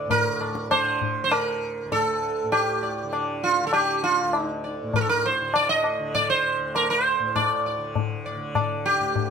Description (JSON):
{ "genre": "indian classical, Hindustani", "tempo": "99 BPM", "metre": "4/4", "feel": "straight", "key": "D raga bhairavi", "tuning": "A4 = 439 Hz", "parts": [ { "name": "sitar", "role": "melody", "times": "0.0-9.3 s", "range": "F4 to Eb5", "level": "-23 LUFS", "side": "right 2 dB", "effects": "none" }, { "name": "tanpura", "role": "drone", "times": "0.0-9.3 s", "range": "D2 to D3", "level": "-33 LUFS", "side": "equal", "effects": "none" }, { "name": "tabla", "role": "percussion", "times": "0.1-9.3 s", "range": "none", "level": "-27 LUFS", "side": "left 5 dB", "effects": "none" } ], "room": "moderate studio reverb, RT60 0.9 s", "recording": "band playing live in one room", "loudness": "-21 LUFS", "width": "side -6 dB against mid", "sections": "0.0-9.3 A section", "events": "none", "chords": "none" }